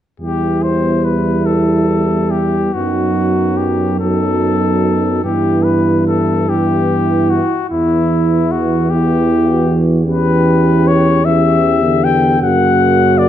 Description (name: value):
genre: classical, hymn-like piece for brass band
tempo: 46-52 BPM (dotted quarters)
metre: 6/8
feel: rubato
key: E minor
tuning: A4 = 440 Hz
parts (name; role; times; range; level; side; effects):
- warm cornet; melody; 0.2-13.3 s; E4 to G5; -18 LUFS; left 8 dB; none
- dark French horn section; second line; 0.2-13.3 s; D#4 to G4; -18 LUFS; right 4 dB; none
- mellow euphonium; accompaniment; 0.2-13.3 s; A#3 to C#4; -21 LUFS; left 2 dB; none
- mellow euphonium; accompaniment; 0.2-13.3 s; C#3 to G3; -18 LUFS; right 3 dB; none
- warm tuba; bass; 0.2-13.3 s; E2 to G2; -18 LUFS; equal; none
room: moderate recital hall reverb, RT60 1.7 s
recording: close, detailed microphones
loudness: -12 LUFS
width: side -11 dB against mid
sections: 0.2-13.3 A section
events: none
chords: 0.2 Em; 2.7 B7/F#; 5.2 Em/G; 7.7 Em; 10.1 C#m7b5/E; 12.4 F#